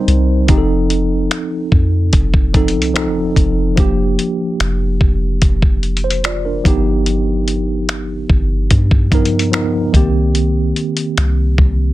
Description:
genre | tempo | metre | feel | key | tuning
contemporary R&B | 73 BPM | 4/4 | straight | Bb major | A4 = 440 Hz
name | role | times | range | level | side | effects
mellow tine electric piano | accompaniment | 0.0-11.9 s | Eb3 to D5 | -18 LUFS | right 1 dB | medium stereo tremolo
soft 808-style bass | bass | 0.1-11.9 s | F1 to G2 | -16 LUFS | equal | none
dusty soul sampler-style drum kit | drums | 0.1-11.8 s | finger snaps, hi-hat, kick drum | -14 LUFS | equal | vintage 12-bit sampler grit, soft clipping on snare
room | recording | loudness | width
little or no reverb | dense, heavily limited modern master | -13 LUFS | side -16 dB against mid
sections
0.0-11.9 A section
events
none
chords
0.5 F7; 3.8 Bb6/F; 6.7 G7alt; 9.9 Cm7

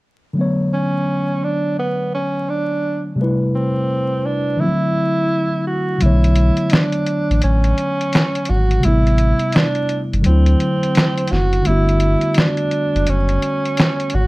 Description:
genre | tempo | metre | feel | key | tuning
lo-fi hip hop | 85 BPM | 4/4 | swing 63% on 16ths | B minor | A4 = 439 Hz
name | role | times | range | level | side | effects
mellow tine electric piano | accompaniment | 0.3-14.3 s | C3 to C#5 | -20 LUFS | left 1 dB | cassette tape, low-pass filter
breathy tenor saxophone | melody | 0.7-14.3 s | B3 to F#4 | -20 LUFS | right 2 dB | low-pass filter
sub bass with octave | bass | 6.0-14.3 s | F#1 to D2 | -15 LUFS | equal | none
lo-fi sampler-style drum kit | drums | 6.0-14.3 s | handclaps, hi-hat, snare drum | -18 LUFS | equal | none
room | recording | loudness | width
moderate studio reverb, RT60 0.6 s | dark, warm production, vinyl crackle | -15 LUFS | side -21 dB against mid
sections
0.4-6.0 A section; 6.0-14.3 B section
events
kick muted 6.0-14.3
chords
0.4 Bm9; 3.2 Am9; 4.6 D9; 6.0 Bm9; 8.8 Am9; 10.2 D9; 11.7 Gmaj9

